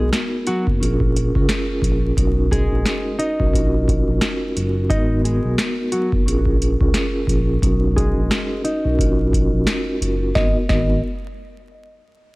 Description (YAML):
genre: hip hop, boom-bap hip-hop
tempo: 88 BPM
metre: 4/4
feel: swing 59% on 16ths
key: G# dorian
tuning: A4 = 440 Hz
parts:
  - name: nylon-string guitar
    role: melody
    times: 0.0-11.0 s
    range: F#3 to D#5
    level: -25 LUFS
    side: equal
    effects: high-pass filter, low-pass filter, digital delay
  - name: vibraphone with soft mallets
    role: accompaniment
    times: 0.0-11.0 s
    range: B3 to A#4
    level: -23 LUFS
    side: equal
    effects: high-pass filter, low-pass filter
  - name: smooth synth bass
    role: bass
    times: 0.0-11.0 s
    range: F#1 to C#2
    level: -21 LUFS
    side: equal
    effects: none
  - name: booming analog drum machine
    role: drums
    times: 0.1-10.9 s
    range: hi-hat, kick drum, snare drum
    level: -20 LUFS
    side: equal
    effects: overdrive
room: small room ambience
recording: vinyl crackle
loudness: -16 LUFS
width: side -22 dB against mid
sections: 0.0-10.4 A section; 10.4-12.4 B section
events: filter sweep 0.0-10.4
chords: 0.0 G#m7; 0.8 A#m7; 2.2 Bmaj7; 3.5 D#m7/A#; 4.9 G#m7; 6.3 A#m7; 7.6 Bmaj7; 9.0 D#m7/A#; 10.4 G#m7